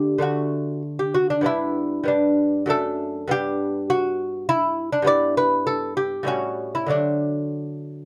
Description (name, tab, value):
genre	classical, baroque-style dance for lute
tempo	99 BPM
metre	3/4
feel	uneven beats, rubato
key	G major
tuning	A4 = 440 Hz
part	lute	solo	0.0-8.1 s	F#2 to D5	-23 LUFS	equal	none
room	little or no reverb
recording	close, detailed microphones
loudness	-23 LUFS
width	mono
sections	0.0-8.1 A section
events	none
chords	0.0 D; 1.5 G; 2.7 D/F#; 3.3 G; 5.1 Em/G; 6.3 A7; 6.9 D